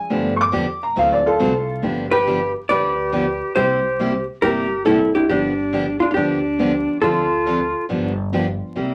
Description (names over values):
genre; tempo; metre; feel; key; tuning
country, western swing; 139 BPM; 4/4; swing 65% on 8ths; G mixolydian; A4 = 435 Hz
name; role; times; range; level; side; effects
dark upright piano; accompaniment; 0.0-8.9 s; E3 to D6; -24 LUFS; equal; none
picked steel-string acoustic guitar; accompaniment; 0.1-8.9 s; C3 to A4; -25 LUFS; equal; none
upright bass; bass; 0.1-8.9 s; G1 to G2; -33 LUFS; equal; none
vintage hollow-body jazz guitar; melody; 2.1-7.9 s; D4 to D5; -22 LUFS; equal; none
bright tenor recorder; second line; 2.1-7.8 s; D4 to G4; -25 LUFS; equal; none
room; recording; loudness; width
wet studio ambience, RT60 0.5 s; vinyl crackle; -19 LUFS; mono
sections
0.0-1.8 A section; 1.8-8.9 B section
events
upright piano solo 0.0-1.8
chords
0.1 G7; 1.0 D7; 1.8 G7; 3.6 C7; 5.3 G7; 7.0 Dm7; 7.9 G7